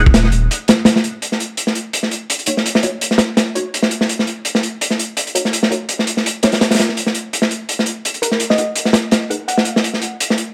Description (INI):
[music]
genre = drum and bass, jungle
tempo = 167 BPM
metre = 4/4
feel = swing 55% on 16ths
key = Eb minor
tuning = A4 = 439 Hz
[part]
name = saturated sub bass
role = bass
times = 0.0-0.5 s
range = Eb1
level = -17 LUFS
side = equal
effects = none
[part]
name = crunchy breakbeat drum kit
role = drums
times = 0.1-10.5 s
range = hi-hat, kick drum, snare drum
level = -17 LUFS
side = equal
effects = high-pass filter on kick, high-pass filter on hats, high-pass filter on snare, high-pass filter on room
[part]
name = filtered dub chord stab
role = stabs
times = 2.5-9.4 s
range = Bb3 to Gb5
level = -26 LUFS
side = equal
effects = phaser, ensemble chorus, dub echo
[part]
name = bell-like FM electric piano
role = melody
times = 8.2-9.8 s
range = Bb4 to Gb5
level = -25 LUFS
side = equal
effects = chorus, dub echo
[sound]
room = little or no reverb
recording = none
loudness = -17 LUFS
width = mono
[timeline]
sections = 0.0-1.2 A section; 1.2-10.5 B section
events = drop 0.0-1.2; break 0.5-1.2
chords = 0.0 N.C.; 1.2 Ebm7; 7.0 Abm7/Eb